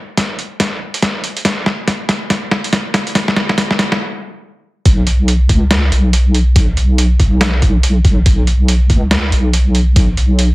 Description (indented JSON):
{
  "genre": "deep dubstep",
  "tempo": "141 BPM",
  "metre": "4/4",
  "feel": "swing 61% on 16ths, half-time",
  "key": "unclear",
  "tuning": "A4 = 441 Hz",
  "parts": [
    { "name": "electronic kick drum", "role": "drums", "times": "0.2-10.1 s", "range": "none", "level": "-13 LUFS", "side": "equal", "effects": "high-pass filter on kick, high-pass filter on room" },
    { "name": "trip hop sampler-style drum kit", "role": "drums", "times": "0.2-10.5 s", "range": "hi-hat, snare drum", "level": "-16 LUFS", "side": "equal", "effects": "none" },
    { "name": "deep soft wobble bass", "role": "bass", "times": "4.9-10.5 s", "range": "B1 to C#2", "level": "-12 LUFS", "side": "equal", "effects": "chorus" }
  ],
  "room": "light reverb",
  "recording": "heavily compressed radio sound",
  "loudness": "-11 LUFS",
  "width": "side -20 dB against mid",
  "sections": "0.0-4.9 A section; 4.9-10.5 B section",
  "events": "build-up 0.0-4.9; drum fill 0.0-4.0; stop 4.0-4.9; drop 4.9-10.5",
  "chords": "none",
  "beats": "0.17 0.60 1.03 | 1.45 1.88 2.30 2.73 | 3.15 3.58 4.00 4.43 | 4.86 5.28 5.71 6.13 | 6.56 6.98 7.41 7.83 | 8.26 8.69 9.11 9.54 | 9.96 10.39"
}